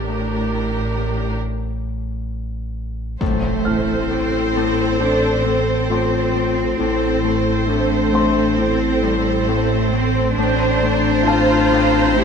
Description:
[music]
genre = cinematic, suspense film score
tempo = 67 BPM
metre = 4/4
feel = straight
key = A phrygian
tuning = A4 = 439 Hz
[part]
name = rich chamber violin section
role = melody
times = 0.0-12.2 s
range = Bb4 to C5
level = -25 LUFS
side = right 2 dB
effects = none
[part]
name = rich chamber viola section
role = accompaniment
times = 0.0-12.2 s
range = C4 to C5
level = -23 LUFS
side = right 4 dB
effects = none
[part]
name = Celtic harp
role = riff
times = 0.0-12.2 s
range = A2 to A3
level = -25 LUFS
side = left 14 dB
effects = none
[part]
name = rich chamber double bass section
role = bass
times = 0.0-12.2 s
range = A1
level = -25 LUFS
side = right 5 dB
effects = none
[part]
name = rich studio cello section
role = bass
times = 0.0-12.2 s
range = A2 to F4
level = -24 LUFS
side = right 2 dB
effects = none
[part]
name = sub bass with octave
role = drone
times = 0.0-12.2 s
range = A1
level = -26 LUFS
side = equal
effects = none
[part]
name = dark grand piano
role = texture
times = 0.0-12.2 s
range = G5 to F6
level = -29 LUFS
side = left 3 dB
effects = none
[part]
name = impact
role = sound effects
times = 3.2-6.8 s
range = none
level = -25 LUFS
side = equal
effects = none
[part]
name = dark clarinet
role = second line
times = 3.6-12.2 s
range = D4 to A4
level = -21 LUFS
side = left 5 dB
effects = none
[part]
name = clear chamber violin section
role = texture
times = 10.4-12.2 s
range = Bb5 to F6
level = -30 LUFS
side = left 5 dB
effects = none
[sound]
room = light reverb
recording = close, detailed microphones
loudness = -16 LUFS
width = side -6 dB against mid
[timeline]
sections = 0.0-3.2 A section; 3.2-12.2 B section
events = break 1.4-3.2; impact 3.2-6.8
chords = 0.0 Gm/A; 3.2 Am; 10.4 Bbadd9/A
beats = 0.52 1.42 2.31 | 3.21 4.10 5.00 5.89 | 6.79 7.69 8.58 9.48 | 10.37 11.27 12.16

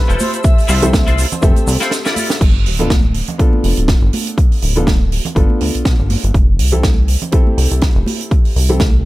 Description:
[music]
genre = nu-disco, nu disco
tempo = 122 BPM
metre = 4/4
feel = swing 56% on 16ths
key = G mixolydian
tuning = A4 = 439 Hz
[part]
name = wide unison lead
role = melody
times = 0.0-1.2 s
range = B4 to E5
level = -24 LUFS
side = equal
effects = tape echo
[part]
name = dark grand piano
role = accompaniment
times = 0.0-8.8 s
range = B3 to E5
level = -22 LUFS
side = left 1 dB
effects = vintage 12-bit sampler grit, slapback echo
[part]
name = muted chamber string section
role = sustained chords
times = 0.0-2.4 s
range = C5 to E6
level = -29 LUFS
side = equal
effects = sidechain pumping
[part]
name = clean electric guitar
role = riff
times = 0.1-2.4 s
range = E4 to D5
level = -21 LUFS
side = left 3 dB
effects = ensemble chorus, slapback echo
[part]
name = chorused synth bass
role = bass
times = 0.1-9.1 s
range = D1 to D2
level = -15 LUFS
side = equal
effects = none
[part]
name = tight funk drum kit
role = drums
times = 0.1-8.9 s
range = crash cymbal, hi-hat, shaker, snare drum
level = -21 LUFS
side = right 3 dB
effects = none
[part]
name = congas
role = percussion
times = 0.2-8.9 s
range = none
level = -25 LUFS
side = right 2 dB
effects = none
[part]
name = electronic kick drum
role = drums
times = 0.4-8.9 s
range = none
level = -12 LUFS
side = equal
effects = none
[sound]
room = studio ambience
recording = none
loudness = -11 LUFS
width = side -18 dB against mid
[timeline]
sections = 0.0-2.4 A section; 2.4-9.1 B section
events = drop 0.0-2.4; break 1.9-2.4; drum fill 1.9-2.4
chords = 0.0 Fmaj7; 2.4 G7; 6.3 Fmaj7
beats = | 0.45 0.94 1.43 1.92 | 2.41 2.90 3.40 3.89 | 4.38 4.87 5.36 5.85 | 6.35 6.84 7.33 7.82 | 8.31 8.80

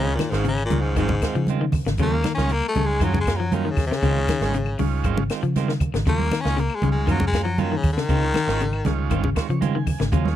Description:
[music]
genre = afrobeat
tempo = 118 BPM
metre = 4/4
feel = straight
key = unclear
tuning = A4 = 438 Hz
[part]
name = raspy baritone saxophone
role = melody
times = 0.0-8.9 s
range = Ab2 to Db4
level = -25 LUFS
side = left 3 dB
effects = none
[part]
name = electric guitar at the edge of break-up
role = arpeggios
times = 0.0-10.3 s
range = Db3 to F3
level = -28 LUFS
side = left 6 dB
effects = none
[part]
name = clean electric guitar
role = stabs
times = 0.0-10.3 s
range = Eb3 to F4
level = -30 LUFS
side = right 12 dB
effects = none
[part]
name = vintage muted fingered electric bass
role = bass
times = 0.0-10.3 s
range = Ab1 to Db3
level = -24 LUFS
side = equal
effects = none
[part]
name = overdriven combo organ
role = accompaniment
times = 0.1-10.4 s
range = Eb3 to Ab5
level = -32 LUFS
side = right 10 dB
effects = none
[part]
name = compact cocktail drum kit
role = drums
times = 0.2-10.3 s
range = hi-hat, kick drum, snare drum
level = -26 LUFS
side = equal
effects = none
[part]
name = claves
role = percussion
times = 0.2-10.0 s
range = none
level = -39 LUFS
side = left 15 dB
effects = none
[part]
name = congas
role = percussion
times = 0.2-10.4 s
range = none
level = -28 LUFS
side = right 4 dB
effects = none
[sound]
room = small room ambience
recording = dry, close 1970s-style studio recording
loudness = -20 LUFS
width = side -12 dB against mid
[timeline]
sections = 0.0-10.4 A section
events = baritone saxophone solo 0.0-10.4; transistor combo organ fill 9.1-10.1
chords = 0.0 Dbmaj9; 2.0 Ebm9; 4.0 Dbmaj9; 6.1 Ebm9; 8.1 Dbmaj9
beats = 0.45 0.97 1.48 | 1.99 2.50 3.01 3.52 | 4.03 4.54 5.05 5.55 | 6.06 6.57 7.08 7.59 | 8.09 8.60 9.11 9.62 | 10.12

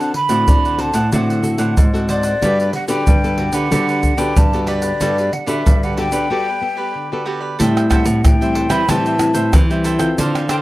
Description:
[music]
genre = samba and choro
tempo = 93 BPM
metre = 4/4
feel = straight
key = G major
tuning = A4 = 440 Hz
[part]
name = breathy mellow jazz flute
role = melody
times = 0.0-10.6 s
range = D5 to B5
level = -20 LUFS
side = equal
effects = none
[part]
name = cavaquinho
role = accompaniment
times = 0.0-10.6 s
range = D4 to G5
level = -25 LUFS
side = right 4 dB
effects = none
[part]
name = nylon-string guitar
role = accompaniment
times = 0.0-10.6 s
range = A2 to A4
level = -23 LUFS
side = left 3 dB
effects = none
[part]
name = nylon-string guitar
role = bass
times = 0.0-10.6 s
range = G2 to E3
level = -19 LUFS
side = equal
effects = none
[part]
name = tube shaker, pandeiro, surdo and tamborim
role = percussion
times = 0.0-10.6 s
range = none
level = -17 LUFS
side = equal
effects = none
[sound]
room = light reverb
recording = dry, close 1970s-style studio recording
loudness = -14 LUFS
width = side -17 dB against mid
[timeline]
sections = 0.0-7.6 A section; 7.6-10.6 B section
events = break 6.3-7.6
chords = 0.0 D7; 2.4 Gmaj9; 7.6 Am7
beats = 0.48 1.13 1.78 | 2.42 3.07 3.72 4.37 | 5.01 5.66 6.31 6.95 | 7.60 8.25 8.89 9.54 | 10.19

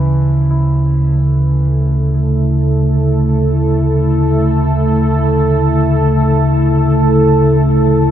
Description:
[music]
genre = dark ambient drone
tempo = free time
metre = none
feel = none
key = unclear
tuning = A4 = 441 Hz
[part]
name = warm concert grand piano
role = arpeggios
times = 0.0-8.1 s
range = E4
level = -32 LUFS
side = left 2 dB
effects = shimmer reverb, tape echo
[part]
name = deep rumbling drone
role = drone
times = 0.0-8.1 s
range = D2 to C#3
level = -12 LUFS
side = equal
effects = built-in reverb, lush chorus
[part]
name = deep dark ambient pad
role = sustained chords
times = 1.1-8.1 s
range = A3 to A4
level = -15 LUFS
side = right 1 dB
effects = chorus, built-in reverb, shimmer reverb
[sound]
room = wet cathedral reverb, RT60 4.7 s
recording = in a vast, echoing space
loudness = -11 LUFS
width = side -10 dB against mid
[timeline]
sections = 0.0-8.1 A section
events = fade-in on grand piano 0.0-8.1; filter sweep on synth drone 0.0-8.1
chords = 0.0 A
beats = free time

